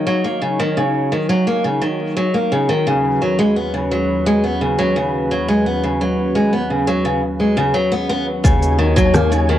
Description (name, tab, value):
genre	folktronica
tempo	86 BPM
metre	4/4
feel	straight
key	Eb minor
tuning	A4 = 440 Hz
part	warm analog pad	sustained chords	0.0-9.6 s	Eb2 to Db5	-22 LUFS	equal	chorus, cassette tape
part	picked steel-string acoustic guitar	arpeggios	0.0-9.6 s	Db3 to Cb4	-16 LUFS	equal	cassette tape, analog delay
part	organic electronic drum kit	drums	0.1-9.5 s	congas, hi-hat, rim click, shaker	-20 LUFS	left 1 dB	low-pass filter on perc, cassette tape, low-pass filter on hats, low-pass filter on snare, low-pass filter on room
part	round analog bass	bass	8.4-9.6 s	Eb2	-17 LUFS	equal	none
part	electronic kick drum	drums	8.4-9.1 s	none	-15 LUFS	equal	cassette tape
part	flickering grainy texture	texture	8.4-9.6 s	Ab5	-28 LUFS	right 2 dB	built-in reverb, cassette tape
room	moderate spring reverb, RT60 2.4 s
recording	home recording on cassette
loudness	-15 LUFS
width	side -12 dB against mid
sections	0.0-8.4 A section; 8.4-9.6 B section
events	none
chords	0.0 Ebm7; 2.9 Db7sus4/Eb; 8.4 Ebm7